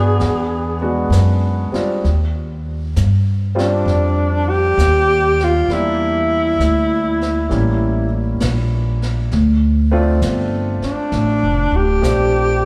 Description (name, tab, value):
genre	jazz ballad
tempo	66 BPM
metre	4/4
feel	swing 67% on 8ths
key	unclear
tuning	A4 = 440 Hz
part	breathy alto saxophone	melody	0.0-12.7 s	D4 to Ab4	-20 LUFS	equal	slapback echo
part	warm grand piano	accompaniment	0.0-12.7 s	G3 to Ab4	-24 LUFS	equal	slapback echo
part	upright bass	bass	0.0-12.7 s	D1 to G2	-19 LUFS	equal	none
part	jazz brush drum kit	drums	0.2-12.7 s	brushed snare drum, hi-hat, snare drum	-32 LUFS	equal	slapback echo
room	light reverb, small room ambience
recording	live gig heard through the venue's PA, club reverb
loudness	-17 LUFS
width	mono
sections	0.0-12.7 A section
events	none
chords	0.2 E9; 2.0 Ebmaj13; 5.7 Em7b5; 7.5 A7b9; 9.3 Dm7